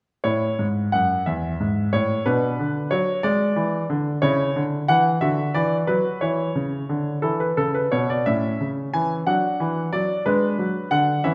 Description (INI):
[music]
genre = classical-period piano sonatina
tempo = 60 BPM (dotted quarters)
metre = 6/8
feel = rubato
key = A major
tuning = A4 = 440 Hz
[part]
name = bright grand piano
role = solo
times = 0.2-11.3 s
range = E2 to G#5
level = -22 LUFS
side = equal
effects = none
[sound]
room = wet recital hall reverb, RT60 1.4 s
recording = dark, warm production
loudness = -22 LUFS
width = mono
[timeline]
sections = 0.2-11.3 A section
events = none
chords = 0.2 A; 2.3 G#dim/B; 4.2 C#madd11; 5.2 D; 6.2 C#m; 7.2 E5; 8.3 A; 9.3 D; 10.3 G#dim